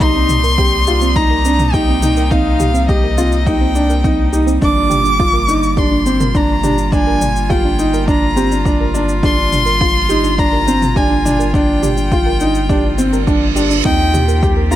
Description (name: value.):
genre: piano and strings electronica.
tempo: 104 BPM.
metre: 4/4.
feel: straight.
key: unclear.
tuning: A4 = 440 Hz.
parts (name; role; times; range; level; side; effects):
warm violin; melody; 0.0-14.8 s; Eb5 to D6; -18 LUFS; equal; ping-pong delay.
warm string quartet; sustained chords; 0.0-14.8 s; C3 to D5; -24 LUFS; equal; none.
soft round pluck; arpeggios; 0.0-14.8 s; C4 to Bb4; -23 LUFS; right 4 dB; chorus, sidechain pumping, ping-pong delay.
warm concert grand piano; riff; 0.0-14.8 s; C4 to G4; -18 LUFS; equal; ping-pong delay.
warm sub bass; bass; 0.0-14.8 s; G1 to Eb2; -18 LUFS; equal; sidechain pumping.
electronic kick drum; drums; 0.0-14.5 s; none; -18 LUFS; equal; none.
electronic shaker and toms; drums; 0.0-14.8 s; none; -24 LUFS; equal; none.
reverse cymbal; sound effects; 13.0-13.8 s; none; -23 LUFS; right 7 dB; none.
room: light reverb, studio ambience.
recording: none.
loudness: -12 LUFS.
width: side -13 dB against mid.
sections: 0.0-14.8 A section.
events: reverse cymbal 13.0-13.8.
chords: 0.0 Cm7; 4.6 Gm7; 13.8 Eb6.